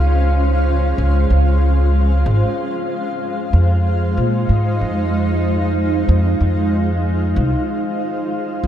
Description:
ambient dub; 94 BPM; 4/4; straight; F minor; A4 = 440 Hz
granular cloud pad; sustained chords; 0.0-8.7 s; Ab3 to F5; -20 LUFS; equal; built-in reverb
upright bass; bass; 0.0-8.7 s; Ab1 to Bb2; -15 LUFS; equal
light reverb; dark, warm production; -15 LUFS; side -10 dB against mid
0.0-8.7 A section
0.0 Dbmaj7; 2.6 Fm7; 7.7 Dbmaj7
| 0.02 0.66 1.30 1.94 | 2.58 3.21 3.85 4.49 | 5.13 5.77 6.41 7.04 | 7.68 8.32

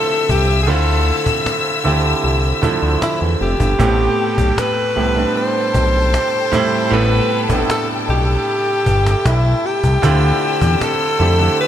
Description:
contemporary R&B; 77 BPM; 4/4; straight; A minor; A4 = 444 Hz
clear alto saxophone; melody; 0.0-11.7 s; E4 to C5; -19 LUFS; left 1 dB; ping-pong delay
clear concert grand piano; accompaniment; 0.0-11.7 s; A2 to A4; -20 LUFS; right 4 dB
clear studio string section; sustained chords; 0.0-11.7 s; C4 to E6; -23 LUFS; left 6 dB
fat analog bass; bass; 0.3-11.5 s; F1 to F2; -16 LUFS; equal
cajon; drums; 0.3-11.7 s; -23 LUFS; equal
glassy wavetable pluck; texture; 10.0-10.8 s; barely audible
moderate lush hall reverb, RT60 2.2 s; bright 1980s-style digital production; -14 LUFS; side -10 dB against mid
0.0-3.8 A section; 3.8-11.7 B section
0.0 Dm9; 3.8 Am9; 10.0 Dm9
| 0.68 1.46 2.24 3.02 | 3.80 4.58 5.35 6.13 | 6.91 7.69 8.47 9.25 | 10.03 10.81 11.59

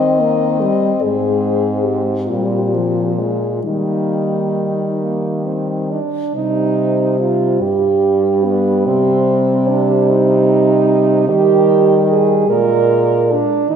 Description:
classical, lyrical piece for horn quartet; 43-50 BPM (dotted quarters); 6/8; rubato; Eb major, C minor from 6.4 s; A4 = 440 Hz
dark French horn; melody; 0.0-13.8 s; Eb4 to Eb5; -22 LUFS; left 7 dB
mellow French horn; second line; 0.0-13.8 s; Bb3 to Bb4; -17 LUFS; right 6 dB
mellow French horn; accompaniment; 0.0-13.8 s; F3 to C4; -19 LUFS; left 1 dB
warm French horn; bass; 0.0-13.8 s; G2 to Eb3; -19 LUFS; equal
wet scoring stage reverb, RT60 1.6 s; heard from further back in the room; -13 LUFS; side -7 dB against mid
0.0-6.4 A section; 6.4-13.8 B section
0.0 Eb; 1.0 Ab; 2.3 Bb5; 3.6 Eb; 6.4 Cm; 7.6 G; 8.9 Cm; 11.3 Eb; 12.5 Bb7
| 1.02 2.29 | 3.63 5.01 | 6.36 7.61 | 8.86 10.09 | 11.29 12.50 | 13.71

